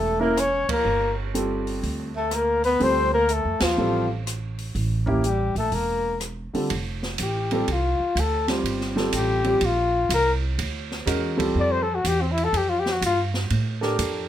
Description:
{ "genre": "jazz, small-group swing and bop", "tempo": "123 BPM", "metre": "4/4", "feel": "swing 66% on 8ths", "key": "D minor", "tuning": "A4 = 440 Hz", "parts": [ { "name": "warm flugelhorn", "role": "melody", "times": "0.0-13.2 s", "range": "C4 to D5", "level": "-23 LUFS", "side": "left 4 dB", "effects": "none" }, { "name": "warm tenor saxophone", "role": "second line", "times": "0.0-6.2 s", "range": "F3 to C#4", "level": "-28 LUFS", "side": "right 4 dB", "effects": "none" }, { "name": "upright bass", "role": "bass", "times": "0.0-14.3 s", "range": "E1 to A2", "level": "-27 LUFS", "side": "right 1 dB", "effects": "none" }, { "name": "warm baby grand piano", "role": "accompaniment", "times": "0.2-14.3 s", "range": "D3 to C5", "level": "-25 LUFS", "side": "right 1 dB", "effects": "none" }, { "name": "open jazz drum kit", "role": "drums", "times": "0.4-14.1 s", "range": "hi-hat, kick drum, ride cymbal, rim click, snare drum", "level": "-31 LUFS", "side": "right 2 dB", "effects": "none" } ], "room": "moderate studio reverb, RT60 0.6 s", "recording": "none", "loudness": "-21 LUFS", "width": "side -11 dB against mid", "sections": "0.0-6.7 A section; 6.7-14.3 B section", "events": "band accent 0.6, 3.5; flugelhorn solo 6.7-14.3", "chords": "0.0 A(b9); 0.9 G5; 2.8 Dm7; 4.8 A7(no3); 6.7 Dm7; 8.6 Gm7; 10.6 Dm" }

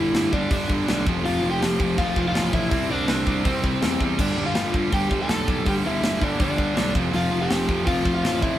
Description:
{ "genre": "punk rock", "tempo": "163 BPM", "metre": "4/4", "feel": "straight", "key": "unclear", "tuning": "A4 = 441 Hz", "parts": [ { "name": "overdriven semi-hollow guitar", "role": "melody", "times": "0.0-8.6 s", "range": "C4 to A5", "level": "-26 LUFS", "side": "left 1 dB", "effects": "none" }, { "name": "sludgy distorted guitar", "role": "riff", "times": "0.0-8.6 s", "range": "F2 to C4", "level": "-27 LUFS", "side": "left 3 dB", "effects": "overdrive" }, { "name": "tight distorted guitar", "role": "riff", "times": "0.0-8.6 s", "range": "F2 to C4", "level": "-28 LUFS", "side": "right 6 dB", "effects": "distortion" }, { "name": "fuzz picked electric bass", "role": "bass", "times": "0.0-8.6 s", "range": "F1 to E2", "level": "-29 LUFS", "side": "equal", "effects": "overdrive" }, { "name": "tight metal drum kit", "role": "drums", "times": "0.1-8.5 s", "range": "crash cymbal, hi-hat, kick drum, snare drum", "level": "-25 LUFS", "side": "equal", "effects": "none" } ], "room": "light reverb", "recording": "band playing live in one room, vinyl crackle", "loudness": "-20 LUFS", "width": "side -12 dB against mid", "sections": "0.0-8.6 A section", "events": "none", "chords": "0.0 G; 1.1 F; 2.7 C; 4.2 G; 7.0 F" }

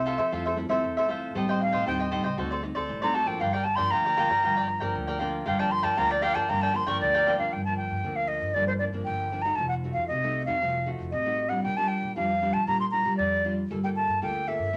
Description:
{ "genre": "samba", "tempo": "117 BPM", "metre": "4/4", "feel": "straight", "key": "G minor", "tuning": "A4 = 435 Hz", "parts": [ { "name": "cavaquinho", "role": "accompaniment", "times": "0.0-7.5 s", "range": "F4 to G5", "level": "-32 LUFS", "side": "equal", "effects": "none" }, { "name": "nylon-string guitar", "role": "accompaniment", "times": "0.0-14.8 s", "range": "G2 to A4", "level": "-34 LUFS", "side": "equal", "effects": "none" }, { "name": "upright bass", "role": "bass", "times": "0.0-14.8 s", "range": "F1 to F3", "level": "-39 LUFS", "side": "equal", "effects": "none" }, { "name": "concert flute", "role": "melody", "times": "1.6-14.8 s", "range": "C5 to C#6", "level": "-28 LUFS", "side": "equal", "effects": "none" } ], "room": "wet studio reverb, RT60 0.6 s", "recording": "none", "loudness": "-27 LUFS", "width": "mono", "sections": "0.0-7.5 A section; 7.5-14.8 B section", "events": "flute solo 0.0-7.5", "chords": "0.0 Fmaj7; 1.3 Am7b5; 2.4 D7b9; 3.4 Gm7; 9.6 F7b9; 11.6 Bb6; 13.7 Gm9" }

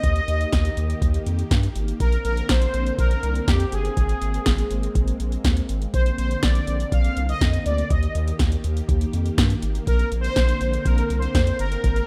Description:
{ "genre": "synth-pop", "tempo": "122 BPM", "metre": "4/4", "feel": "straight", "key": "Bb mixolydian", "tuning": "A4 = 440 Hz", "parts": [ { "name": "analog synth brass", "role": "melody", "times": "0.0-12.1 s", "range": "G4 to F5", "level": "-30 LUFS", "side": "equal", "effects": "chorus, digital delay" }, { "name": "string machine, violas", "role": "sustained chords", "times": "0.0-12.1 s", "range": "D3 to G4", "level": "-34 LUFS", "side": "equal", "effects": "ensemble chorus" }, { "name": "round analog bass", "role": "bass", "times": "0.0-12.0 s", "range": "G1 to G2", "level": "-25 LUFS", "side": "equal", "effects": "none" }, { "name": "electro analog drum machine", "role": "drums", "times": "0.0-12.1 s", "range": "hi-hat, kick drum, snare drum", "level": "-24 LUFS", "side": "equal", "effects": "none" } ], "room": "digital ambience", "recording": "rough home demo mix", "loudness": "-22 LUFS", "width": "mono", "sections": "0.0-12.1 A section", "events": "none", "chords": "0.0 Eb; 2.0 Bbadd9; 4.0 Abadd9; 5.9 Bbadd9; 7.9 Eb; 9.9 Bbadd9" }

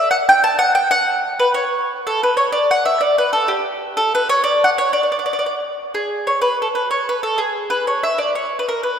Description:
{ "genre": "italian folk", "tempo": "124 BPM (dotted quarters)", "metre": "6/8", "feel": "straight", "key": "D major", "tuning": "A4 = 440 Hz", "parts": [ { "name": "mandolin", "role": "solo", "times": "0.0-9.0 s", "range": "G4 to A5", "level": "-15 LUFS", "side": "equal", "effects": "none" } ], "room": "wet church reverb, RT60 3.2 s", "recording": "recorded in a church or concert hall", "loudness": "-15 LUFS", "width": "side -8 dB against mid", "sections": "0.0-5.9 A section; 5.9-9.0 B section", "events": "none", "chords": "none" }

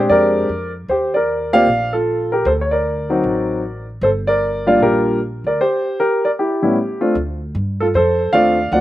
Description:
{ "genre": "jazz piano trio", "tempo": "153 BPM", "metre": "4/4", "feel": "swing 64% on 8ths", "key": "unclear", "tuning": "A4 = 440 Hz", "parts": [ { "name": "warm grand piano", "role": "melody", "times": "0.0-8.8 s", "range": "A2 to F#5", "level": "-15 LUFS", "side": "equal", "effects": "none" }, { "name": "upright bass", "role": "bass", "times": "0.0-8.8 s", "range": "G1 to G2", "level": "-25 LUFS", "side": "equal", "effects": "none" } ], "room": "little or no reverb", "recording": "recorded outdoors, with no room sound", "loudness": "-15 LUFS", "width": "side -14 dB against mid", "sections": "0.0-7.2 A section; 7.2-8.8 B section", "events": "none", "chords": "0.0 Bb13; 0.9 Eb6; 2.5 D7b9; 4.0 Gm7; 5.6 Gmadd11; 6.4 A7(no3); 7.2 Dm7" }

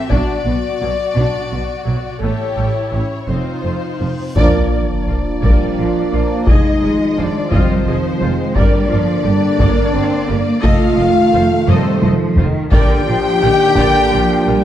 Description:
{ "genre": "cinematic, epic orchestral film score", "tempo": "57 BPM (dotted quarters)", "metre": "6/8", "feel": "straight", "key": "B phrygian", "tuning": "A4 = 440 Hz", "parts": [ { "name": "warm chamber violin section", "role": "melody", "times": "0.0-14.6 s", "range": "C5 to G5", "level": "-25 LUFS", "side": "left 5 dB", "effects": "none" }, { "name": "warm symphonic violin section", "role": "second line", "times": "0.0-14.6 s", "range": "F4 to G5", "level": "-24 LUFS", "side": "left 2 dB", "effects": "none" }, { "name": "rich symphonic viola section", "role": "accompaniment", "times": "0.0-14.6 s", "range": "E3 to Eb5", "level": "-24 LUFS", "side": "equal", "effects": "none" }, { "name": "rich studio cello section", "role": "bass", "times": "0.1-14.6 s", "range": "F2 to C4", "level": "-20 LUFS", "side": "right 1 dB", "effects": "none" }, { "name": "rich symphonic double bass section", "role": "bass", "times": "0.1-14.5 s", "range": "F1 to B1", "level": "-21 LUFS", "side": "right 2 dB", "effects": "none" }, { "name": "taiko ensemble", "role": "drums", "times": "0.1-14.4 s", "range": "none", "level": "-16 LUFS", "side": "equal", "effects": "none" }, { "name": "reverse cymbal and sub drop", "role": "sound effects", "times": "4.5-6.5 s", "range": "none", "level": "-23 LUFS", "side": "equal", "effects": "none" }, { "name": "mellow French horn section", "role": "sustained chords", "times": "2.9-14.6 s", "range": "C4 to G4", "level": "-19 LUFS", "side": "left 2 dB", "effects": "none" }, { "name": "warm trombone section", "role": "sustained chords", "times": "4.4-14.6 s", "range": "D3 to D4", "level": "-22 LUFS", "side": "right 3 dB", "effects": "none" } ], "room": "moderate scoring stage reverb, RT60 1.5 s", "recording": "dark, warm production", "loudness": "-13 LUFS", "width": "side -11 dB against mid", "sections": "0.0-4.4 A section; 4.4-14.6 B section", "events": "reverse cymbal 4.4; band accent 4.4-5.1; impact 4.4-6.5; drum fill 11.7-12.7", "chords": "0.1 Bm; 2.2 A7; 3.3 F7(no3); 4.4 Bb; 6.5 Fm7; 8.6 Gm; 10.6 F7; 12.7 Bb" }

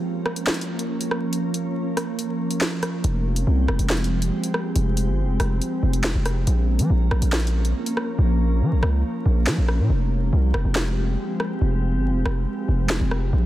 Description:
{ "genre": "hip hop, drill", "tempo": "140 BPM", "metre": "4/4", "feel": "half-time", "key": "F minor", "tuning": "A4 = 436 Hz", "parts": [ { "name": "glassy FM pad", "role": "sustained chords", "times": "0.0-13.5 s", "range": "F3 to Bb4", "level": "-26 LUFS", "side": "right 1 dB", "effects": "ensemble chorus, built-in reverb" }, { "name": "drill drum kit", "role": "drums", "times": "0.3-13.2 s", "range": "handclaps, hi-hat, rim click, snare drum", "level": "-26 LUFS", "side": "equal", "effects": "none" }, { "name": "distorted 808-style bass", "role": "bass", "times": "3.0-13.5 s", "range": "F1 to F3", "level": "-20 LUFS", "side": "equal", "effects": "distortion" } ], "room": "little or no reverb", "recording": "dense, heavily limited modern master, vinyl crackle", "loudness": "-20 LUFS", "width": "side -14 dB against mid", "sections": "0.0-13.5 A section", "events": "break 0.0-3.0; hi-hats muted 8.2-9.9, 9.9-13.5", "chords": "0.0 Bbm; 3.0 Fmadd9; 6.5 Bbm; 9.9 Fmadd9" }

